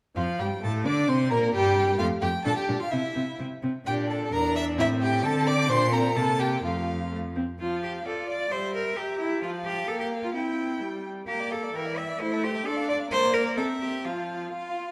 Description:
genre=quick classical-period movement for string quartet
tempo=130 BPM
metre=2/4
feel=rubato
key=F major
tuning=A4 = 439 Hz
part: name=rich violin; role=melody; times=0.2-14.9 s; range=E5 to E6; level=-35 LUFS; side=equal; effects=none
part: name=rich violin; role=second line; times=0.2-14.9 s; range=E4 to G5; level=-34 LUFS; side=equal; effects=none
part: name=rich viola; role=accompaniment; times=0.2-14.9 s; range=E3 to G4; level=-32 LUFS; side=equal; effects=none
part: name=bright cello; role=bass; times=0.2-14.5 s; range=E2 to E5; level=-31 LUFS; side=equal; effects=none
room=moderate scoring stage reverb, RT60 1.9 s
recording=none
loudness=-27 LUFS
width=mono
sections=0.2-7.6 A section; 7.6-14.9 A section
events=none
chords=0.2 F; 1.1 C5; 2.0 F; 2.5 Gm/Bb; 2.9 C; 3.9 Bb; 4.3 Dsus2/E; 4.8 Am; 5.2 D5; 5.7 Bb; 6.2 C5; 6.6 F; 8.5 C7/G; 9.4 F; 9.9 Gm/Bb; 10.3 C; 11.3 Bb; 11.7 Em7b5; 12.2 Am; 12.7 Dm7; 13.1 Bb; 13.6 C7; 14.0 F

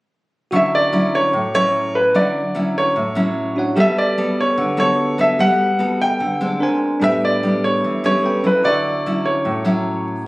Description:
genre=bossa nova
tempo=148 BPM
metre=4/4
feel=straight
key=D major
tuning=A4 = 440 Hz
part: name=bell-like tine electric piano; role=accompaniment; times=0.5-10.3 s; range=C#4 to C#6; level=-25 LUFS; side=right 1 dB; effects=none
part: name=nylon-string guitar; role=accompaniment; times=0.5-10.2 s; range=A2 to A4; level=-20 LUFS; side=equal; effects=none
part: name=warm baby grand piano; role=melody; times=0.6-10.0 s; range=B4 to G5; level=-18 LUFS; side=equal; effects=none
room=moderate large studio reverb, RT60 1.2 s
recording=recorded on a phone in the room, studio reverb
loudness=-15 LUFS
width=side -21 dB against mid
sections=0.5-10.3 A section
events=none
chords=0.5 Dmaj9; 3.8 Gmaj9; 6.6 Bb9; 7.0 A9sus4; 8.2 A9; 8.6 Dmaj9

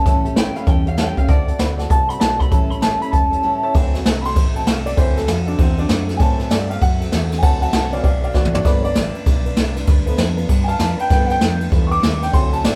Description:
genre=rockabilly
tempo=196 BPM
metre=4/4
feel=swing 63% on 8ths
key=D mixolydian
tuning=A4 = 436 Hz
part: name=electric guitar through a small old amp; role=melody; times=0.0-3.7 s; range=D5 to B5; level=-23 LUFS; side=equal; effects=none
part: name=picked steel-string acoustic guitar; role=accompaniment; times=0.0-12.8 s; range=A2 to B4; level=-30 LUFS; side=equal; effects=none
part: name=warm upright piano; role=accompaniment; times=0.1-12.8 s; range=E3 to D6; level=-26 LUFS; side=equal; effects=none
part: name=woody fretless electric bass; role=bass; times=0.1-12.8 s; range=E1 to A2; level=-25 LUFS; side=equal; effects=none
part: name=jazz brush drum kit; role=drums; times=0.1-12.7 s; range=hi-hat, kick drum, ride cymbal, snare drum, toms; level=-19 LUFS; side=equal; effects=none
room=light reverb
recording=band playing live in one room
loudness=-17 LUFS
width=mono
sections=0.0-3.8 A section; 3.8-12.8 B section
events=break 3.4-3.8; upright piano solo 3.8-12.8; drum fill 8.3-8.7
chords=0.0 A7; 1.3 D7; 2.5 A7; 3.8 D7; 8.7 G7

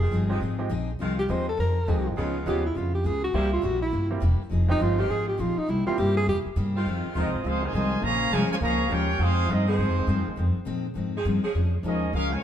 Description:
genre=jazz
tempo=205 BPM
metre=4/4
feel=swing 62% on 8ths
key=F minor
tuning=A4 = 440 Hz
part: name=breathy tenor saxophone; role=melody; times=0.0-6.4 s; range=Eb4 to C5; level=-28 LUFS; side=right 1 dB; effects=none
part: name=picked steel-string acoustic guitar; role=accompaniment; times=0.0-12.3 s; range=F2 to Ab4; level=-32 LUFS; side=left 4 dB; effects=none
part: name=mellow saxophone section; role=sustained chords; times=0.0-11.5 s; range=C3 to Ab4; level=-34 LUFS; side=right 2 dB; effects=none
part: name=upright bass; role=bass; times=0.0-12.4 s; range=E1 to Bb2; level=-26 LUFS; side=equal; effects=none
part: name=bright baby grand piano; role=accompaniment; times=0.3-6.2 s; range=F3 to Ab4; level=-33 LUFS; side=right 3 dB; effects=none
part: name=warm trumpet section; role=melody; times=7.2-12.4 s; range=Ab3 to Bb5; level=-28 LUFS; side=right 1 dB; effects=none
part: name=warm trombone section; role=second line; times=7.2-12.4 s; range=C3 to G4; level=-30 LUFS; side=right 1 dB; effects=none
room=moderate echo chamber reverb, RT60 1.7 s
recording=heard from further back in the room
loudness=-23 LUFS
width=side -10 dB against mid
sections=0.0-6.9 A section; 6.9-12.4 B section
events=tenor saxophone solo 0.0-6.9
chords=0.0 Fm7; 2.2 Db7; 3.3 C7; 4.5 Fm7; 5.7 C7; 6.9 Fm7; 8.0 Bbm7; 9.2 Fm7; 11.5 Bbm7

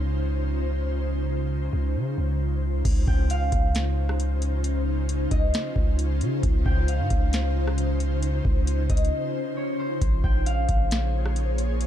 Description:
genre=hip hop, atmospheric cloud-rap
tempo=134 BPM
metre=4/4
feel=half-time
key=Db lydian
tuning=A4 = 440 Hz
part: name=ethereal airy pad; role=sustained chords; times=0.0-11.9 s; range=Db3 to Db5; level=-29 LUFS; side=left 1 dB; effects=ensemble chorus, built-in reverb, sidechain pumping
part: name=long sustained 808-style bass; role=bass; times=0.0-11.9 s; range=Bb1 to Db3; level=-24 LUFS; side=equal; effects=none
part: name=booming analog drum machine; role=drums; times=2.9-11.9 s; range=crash cymbal, hi-hat, kick drum, rim click, snare drum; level=-25 LUFS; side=equal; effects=none
part: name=concert harp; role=melody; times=3.1-11.9 s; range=C5 to G5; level=-32 LUFS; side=equal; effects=low-pass filter, tape echo
room=little or no reverb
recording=dark, warm production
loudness=-22 LUFS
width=side -11 dB against mid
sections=0.0-2.9 A section; 2.9-11.9 B section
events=break 9.1-10.0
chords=0.0 Dbmaj9; 10.0 Bbm7

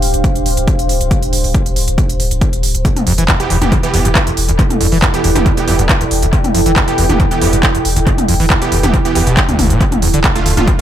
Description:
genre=driving peak-time techno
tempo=138 BPM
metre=4/4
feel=straight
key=E phrygian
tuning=A4 = 440 Hz
part: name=warm sub bass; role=bass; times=0.0-10.7 s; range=D1 to E1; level=-18 LUFS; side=equal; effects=overdrive, sidechain pumping, low-pass filter
part: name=techno drum kit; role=drums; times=0.0-10.8 s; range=handclaps, hi-hat, toms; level=-17 LUFS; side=equal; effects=sidechain pumping on hats, sidechain pumping on toms, tape echo
part: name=deep dark ambient pad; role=texture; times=0.0-10.8 s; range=D4 to G5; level=-20 LUFS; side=right 2 dB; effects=chorus, built-in reverb, sidechain pumping
part: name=electronic kick drum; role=drums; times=0.2-10.8 s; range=none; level=-15 LUFS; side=equal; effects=none
part: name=screaming distorted acid line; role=riff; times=2.8-10.7 s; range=D2 to E3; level=-18 LUFS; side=equal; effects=distortion, analog chorus, sidechain pumping, dub echo
part: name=supersaw stab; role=stabs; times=3.4-10.8 s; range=D3 to G4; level=-20 LUFS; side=right 4 dB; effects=sidechain pumping, dub echo
room=digital ambience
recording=echo-heavy mix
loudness=-11 LUFS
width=side -11 dB against mid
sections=0.0-10.8 A section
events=none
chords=0.0 Dm; 2.9 Em; 9.8 Dm

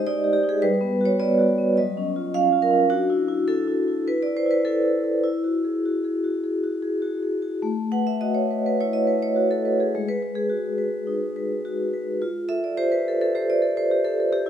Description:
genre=classical, contemporary piece for solo vibraphone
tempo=105 BPM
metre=4/4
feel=rubato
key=unclear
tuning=A4 = 440 Hz
part: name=vibraphone with medium hard mallets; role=solo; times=0.0-14.5 s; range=F#3 to F#5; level=-20 LUFS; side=equal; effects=none
room=wet recital hall reverb, RT60 1.8 s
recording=minimal, uncompressed stereo recording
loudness=-20 LUFS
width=side -9 dB against mid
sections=0.0-7.6 A section; 7.6-14.5 B section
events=none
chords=0.0 G#5; 0.6 Gmaj7; 1.8 F#5; 2.9 Dadd9; 5.2 Eadd9; 7.6 Asus2; 9.9 G#m7; 12.2 Fadd9

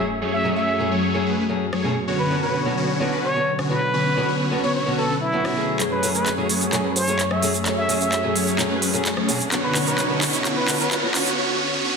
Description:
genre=EDM, festival progressive house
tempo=129 BPM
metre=4/4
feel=straight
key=F# minor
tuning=A4 = 440 Hz
part: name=trumpet with plunger mute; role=melody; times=0.0-11.0 s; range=E4 to E5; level=-25 LUFS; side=equal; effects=vintage 12-bit sampler grit, ping-pong delay
part: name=fingerpicked steel-string acoustic guitar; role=accompaniment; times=0.0-11.1 s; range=B2 to G#4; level=-28 LUFS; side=left 2 dB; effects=vintage 12-bit sampler grit, ping-pong delay
part: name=lush unison pad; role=sustained chords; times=0.0-11.4 s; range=F#2 to C#5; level=-28 LUFS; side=left 1 dB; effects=chorus, vintage 12-bit sampler grit
part: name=supersaw chords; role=riff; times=0.0-12.0 s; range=D3 to C#5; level=-24 LUFS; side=equal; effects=phaser, low-pass filter, ping-pong delay
part: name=sub drop and riser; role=sound effects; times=0.0-0.2, 8.9-11.4 s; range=none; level=-31 LUFS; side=right 2 dB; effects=none
part: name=big-room dance drum kit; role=drums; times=1.7-11.4 s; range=cabasa, handclaps, hi-hat, rim click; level=-24 LUFS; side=right 1 dB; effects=studio reverb, soft clipping on snare
room=wet digital room reverb, RT60 1.4 s, digital ambience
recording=dense, heavily limited modern master, high-pass filter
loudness=-19 LUFS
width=side -5 dB against mid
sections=0.0-5.8 A section; 5.8-12.0 B section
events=impact 0.0; build-up 5.8-12.0; drum fill 5.8-11.4; filter sweep on supersaw synth 5.8-12.0; riser 8.9-11.4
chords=0.0 F#madd9; 2.1 Bmadd9; 5.8 F#madd9; 9.5 Bmadd9

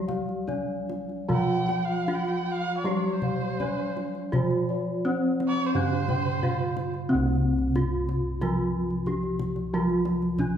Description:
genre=Javanese gamelan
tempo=75-91 BPM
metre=4/4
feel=straight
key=unclear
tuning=A4 = 440 Hz
part: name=gamelan-type bronze metallophone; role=melody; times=0.0-10.6 s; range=C4 to G4-40c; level=-30 LUFS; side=equal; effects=none
part: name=gamelan-type bronze metallophone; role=accompaniment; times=0.0-10.6 s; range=C3 to G3-40c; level=-30 LUFS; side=equal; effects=none
part: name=gamelan-type bossed gongs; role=arpeggios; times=0.0-6.8 s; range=C5 to G5-40c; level=-35 LUFS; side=left 3 dB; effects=none
part: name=gamelan-type bossed gongs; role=bass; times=0.0-10.6 s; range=C2 to F4+30c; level=-31 LUFS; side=equal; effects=none
part: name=kendang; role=percussion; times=0.1-10.5 s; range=none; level=-33 LUFS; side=equal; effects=none
part: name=dark erhu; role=second line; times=1.3-7.0 s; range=C5 to G5-35c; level=-31 LUFS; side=right 3 dB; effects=none
room=wet large studio reverb, RT60 1.2 s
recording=band playing live in one room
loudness=-24 LUFS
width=side -9 dB against mid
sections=0.0-7.1 A section; 7.1-10.6 B section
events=none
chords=none

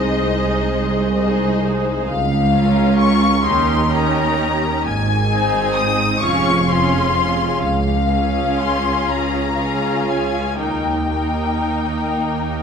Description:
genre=classical, slow romantic movement for string orchestra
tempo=38-45 BPM (dotted quarters)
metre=6/8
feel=rubato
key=Ab major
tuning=A4 = 440 Hz
part: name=warm symphonic violin section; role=melody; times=0.0-12.6 s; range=Eb5 to Eb6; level=-21 LUFS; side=left 5 dB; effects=none
part: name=clear symphonic violin section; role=second line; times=0.0-12.6 s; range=Eb4 to F5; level=-25 LUFS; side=left 3 dB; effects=none
part: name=clear symphonic viola section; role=accompaniment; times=0.0-12.6 s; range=Ab3 to F4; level=-22 LUFS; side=right 2 dB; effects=none
part: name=clear symphonic double bass section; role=bass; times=0.0-12.6 s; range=F1 to Eb2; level=-22 LUFS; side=right 3 dB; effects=none
part: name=rich symphonic cello section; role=bass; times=0.0-12.6 s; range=C2 to Ab2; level=-22 LUFS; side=right 2 dB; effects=none
room=moderate scoring stage reverb, RT60 1.6 s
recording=none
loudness=-15 LUFS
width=side -6 dB against mid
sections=0.0-12.6 A section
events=none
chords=0.0 Ab/C; 2.1 Bbm/Db; 3.4 Eb7; 4.8 Ab; 6.2 Db/F; 7.6 Db; 10.6 Eb

